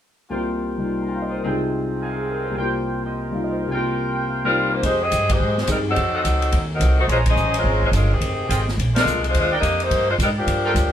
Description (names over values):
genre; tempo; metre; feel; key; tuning
jazz, big band swing; 213 BPM; 4/4; swing 62% on 8ths; F minor; A4 = 441 Hz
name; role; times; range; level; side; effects
warm grand piano; accompaniment; 0.3-6.0 s; C2 to Bb5; -24 LUFS; left 1 dB; none
clear trumpet section; stabs; 0.3-10.7 s; C4 to Eb6; -27 LUFS; right 1 dB; none
clear saxophone section; melody; 4.4-10.9 s; Eb3 to Eb5; -20 LUFS; left 1 dB; none
upright bass; bass; 4.8-10.9 s; F1 to Ab2; -21 LUFS; right 1 dB; none
swinging big-band drum kit; drums; 4.8-10.8 s; hi-hat, kick drum, ride cymbal, snare drum; -27 LUFS; equal; none
room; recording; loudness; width
moderate studio reverb, RT60 0.7 s; band playing live in one room; -18 LUFS; side -10 dB against mid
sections
0.3-4.8 A section; 4.8-10.9 B section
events
band accent 5.3, 7.2, 8.9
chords
0.3 C7sus4; 1.4 Fm9/C; 2.6 C7sus4; 4.8 Fm9; 6.0 F7b9; 7.1 Bbm9; 8.2 Fm9; 8.8 Bb9; 9.3 Ebmaj7